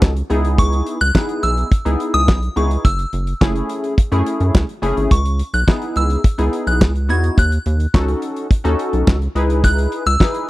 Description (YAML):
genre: early-eighties boogie funk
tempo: 106 BPM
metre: 4/4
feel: straight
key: C# minor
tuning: A4 = 440 Hz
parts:
  - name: funky polysynth comp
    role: accompaniment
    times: 0.0-10.5 s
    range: A3 to B4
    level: -22 LUFS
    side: left 1 dB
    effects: chorus
  - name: rubbery square bass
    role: bass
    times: 0.0-10.2 s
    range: F#1 to F#2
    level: -17 LUFS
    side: equal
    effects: none
  - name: damped 70s drum kit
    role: drums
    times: 0.0-10.5 s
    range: handclaps, hi-hat, kick drum, snare drum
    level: -13 LUFS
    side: equal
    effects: none
  - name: delicate synth tine bell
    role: melody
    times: 0.6-10.5 s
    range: C#6 to G#6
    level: -22 LUFS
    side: equal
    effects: chorus, slapback echo
room: small room ambience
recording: dry, close 1970s-style studio recording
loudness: -14 LUFS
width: side -18 dB against mid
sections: 0.0-10.5 A section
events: none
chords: 0.3 C#m9; 2.8 F#m7; 5.1 C#m9; 7.4 D#m7b5; 9.4 C#m9